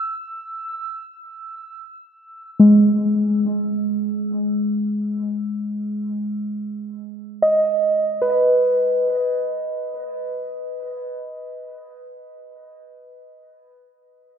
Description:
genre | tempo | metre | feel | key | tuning
ambient | free time | none | none | unclear | A4 = 441 Hz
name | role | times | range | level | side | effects
muted felt-like synth keys | solo | 0.0-14.4 s | G#3 to E6 | -19 LUFS | equal | chorus, diffuse ambient delay
room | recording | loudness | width
wet lush hall reverb, RT60 2.7 s | none | -18 LUFS | side -8 dB against mid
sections
0.0-8.2 A section; 8.2-12.8 B section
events
none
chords
0.0 E; 3.6 G#5; 8.2 N.C.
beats
free time

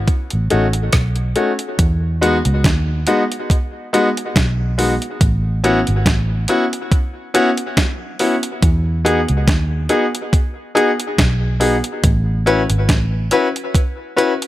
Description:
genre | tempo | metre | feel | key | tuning
lovers rock reggae | 70 BPM | 4/4 | swing 55% on 16ths | E major | A4 = 435 Hz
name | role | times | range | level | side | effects
vintage muted fingered electric bass | bass | 0.0-13.3 s | G#1 to E2 | -18 LUFS | equal | none
crisp 8-bit digital drum machine | drums | 0.1-14.5 s | hi-hat, kick drum, rim click, snare drum | -17 LUFS | equal | overdrive
clear baby grand piano | accompaniment | 0.5-14.3 s | G#3 to B4 | -18 LUFS | left 2 dB | tape echo
room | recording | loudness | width
light reverb | none | -14 LUFS | side -15 dB against mid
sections
0.0-1.8 A section; 1.8-14.5 B section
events
none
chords
0.1 B7; 1.8 Emaj7; 5.2 A6; 8.6 Emaj7; 12.0 A6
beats
0.08 0.94 | 1.79 2.65 3.50 4.35 | 5.21 6.06 6.92 7.77 | 8.62 9.48 10.33 11.18 | 12.04 12.89 13.75

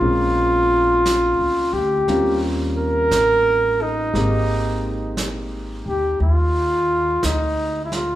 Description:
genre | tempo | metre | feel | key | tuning
jazz ballad | 58 BPM | 4/4 | swing 66% on 8ths | unclear | A4 = 441 Hz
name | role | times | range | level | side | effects
trumpet with bucket mute | melody | 0.0-8.2 s | Eb4 to Bb4 | -18 LUFS | equal | none
warm grand piano | accompaniment | 0.0-8.2 s | G3 to G4 | -26 LUFS | equal | none
upright bass | bass | 0.0-8.2 s | Ab1 to Eb2 | -24 LUFS | equal | none
vintage brush drum kit | drums | 0.0-8.2 s | brushed snare drum, hi-hat, snare drum | -31 LUFS | right 2 dB | none
room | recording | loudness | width
moderate large studio reverb, RT60 1.0 s | band playing live in one room | -17 LUFS | side -14 dB against mid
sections
0.0-8.2 A section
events
none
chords
0.0 Bbm9; 2.1 Eb13; 4.1 Abmaj9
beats
| 0.02 1.05 2.08 3.11 | 4.14 5.17 6.20 7.23

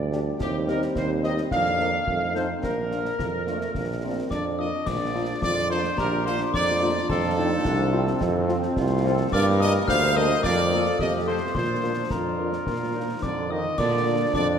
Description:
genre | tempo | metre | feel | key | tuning
military-style march for wind band | 108 BPM | 2/4 | straight | Bb major | A4 = 441 Hz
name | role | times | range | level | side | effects
bright trumpet section | melody | 0.0-14.5 s | G4 to F5 | -29 LUFS | equal | none
mellow woodwind section | second line | 0.0-14.6 s | C4 to F5 | -30 LUFS | left 1 dB | none
dark trombone section | sustained chords | 0.0-14.6 s | F3 to Eb4 | -31 LUFS | right 1 dB | none
clear tuba | bass | 0.0-14.6 s | Bb1 to Bb2 | -26 LUFS | right 3 dB | none
mellow French horn section | accompaniment | 0.1-14.2 s | Bb3 to Bb4 | -32 LUFS | left 4 dB | none
concert snare drum, clash cymbals and concert bass drum | drums | 0.1-14.5 s | none | -34 LUFS | left 1 dB | none
glockenspiel with soft plastic mallets | second line | 4.3-14.6 s | A5 to F6 | -31 LUFS | left 5 dB | none
clear euphonium | second line | 13.2-14.5 s | D3 to Eb3 | -32 LUFS | right 4 dB | none
room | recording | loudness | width
wet concert hall reverb, RT60 1.9 s | none | -22 LUFS | side -7 dB against mid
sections
0.0-4.9 A section; 4.9-13.8 B section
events
none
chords
0.4 Cm/Eb; 1.5 Bb/F; 2.1 F7; 2.6 Bb; 7.1 F; 9.3 Gm; 10.4 Bb/F; 11.0 F7; 11.6 Bb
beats
| 0.41 0.96 | 1.52 2.08 | 2.64 3.19 | 3.75 4.31 | 4.87 5.43 | 5.98 6.54 | 7.10 7.66 | 8.21 8.77 | 9.33 9.88 | 10.44 11.00 | 11.56 12.11 | 12.67 13.23 | 13.79 14.34

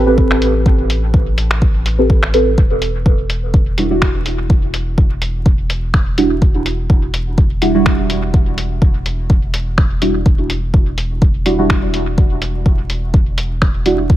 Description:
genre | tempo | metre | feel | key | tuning
dub techno | 125 BPM | 4/4 | swing 54% on 16ths | E minor | A4 = 439 Hz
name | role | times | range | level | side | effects
deep mellow chord stab | stabs | 0.0-14.0 s | G3 to B4 | -17 LUFS | right 2 dB | chorus, phaser, cassette tape, sidechain pumping, dub echo
round analog bass | bass | 0.0-14.2 s | E1 to A1 | -19 LUFS | equal | sidechain pumping
electronic kick drum | drums | 0.2-14.2 s | none | -13 LUFS | equal | overdrive
lo-fi sampler-style drum kit | drums | 0.3-14.0 s | finger snaps, hi-hat | -21 LUFS | equal | dub echo
room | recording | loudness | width
little or no reverb | vinyl crackle | -12 LUFS | side -14 dB against mid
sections
0.0-2.6 A section; 2.6-14.2 A section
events
filter sweep on synth stab 0.0-2.6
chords
0.0 Am9; 2.6 Em9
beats
0.18 | 0.66 1.14 1.62 2.10 | 2.58 3.06 3.54 4.02 | 4.50 4.98 5.46 5.94 | 6.42 6.90 7.38 7.86 | 8.34 8.82 9.30 9.78 | 10.26 10.74 11.22 11.70 | 12.18 12.66 13.14 13.62 | 14.10

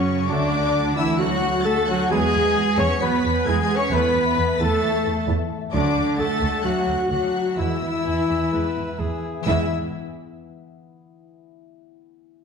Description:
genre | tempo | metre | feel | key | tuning
cinematic, heroic adventure film score | 131 BPM | 4/4 | straight | E mixolydian | A4 = 439 Hz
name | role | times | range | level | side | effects
warm symphonic violin section | melody | 0.0-9.7 s | C#6 to C#7 | -31 LUFS | left 4 dB | none
mellow clarinet | second line | 0.0-9.7 s | C#4 to C#5 | -29 LUFS | left 1 dB | none
mellow hollow large flute ensemble | second line | 0.0-9.7 s | C#5 to C#6 | -31 LUFS | left 3 dB | none
rich studio violin section | second line | 0.0-9.7 s | C#5 to C#6 | -34 LUFS | left 2 dB | none
rich symphonic viola section | accompaniment | 0.0-9.7 s | C#4 to C#5 | -30 LUFS | equal | none
dark French horn section | sustained chords | 0.0-9.7 s | C#4 to C#5 | -29 LUFS | left 5 dB | none
concert harp | arpeggios | 0.0-11.3 s | F#2 to B5 | -31 LUFS | left 6 dB | none
mellow trumpet section | stabs | 0.0-9.7 s | C#4 to E5 | -28 LUFS | equal | none
clear symphonic cello section | bass | 0.0-9.7 s | C#3 to C#4 | -27 LUFS | right 3 dB | none
rich symphonic double bass section | bass | 0.0-9.7 s | D2 to F#2 | -26 LUFS | right 3 dB | none
mellow trombone section | sustained chords | 0.3-9.7 s | E3 to B3 | -32 LUFS | right 4 dB | none
warm cor anglais | second line | 8.0-9.5 s | E4 to B4 | -33 LUFS | right 1 dB | none
room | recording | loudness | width
wet scoring stage reverb, RT60 1.6 s | dark, warm production | -19 LUFS | side -6 dB against mid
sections
0.0-9.5 A section; 9.5-11.3 B section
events
none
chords
0.3 D; 2.1 Eadd9; 3.9 Asus2/E; 5.7 D; 7.6 E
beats
| 0.29 0.75 1.20 1.66 | 2.11 2.56 3.01 3.47 | 3.92 4.38 4.83 5.29 | 5.74 6.20 6.65 7.11 | 7.58 8.05 8.53 9.00 | 9.46 9.92 10.38 10.85

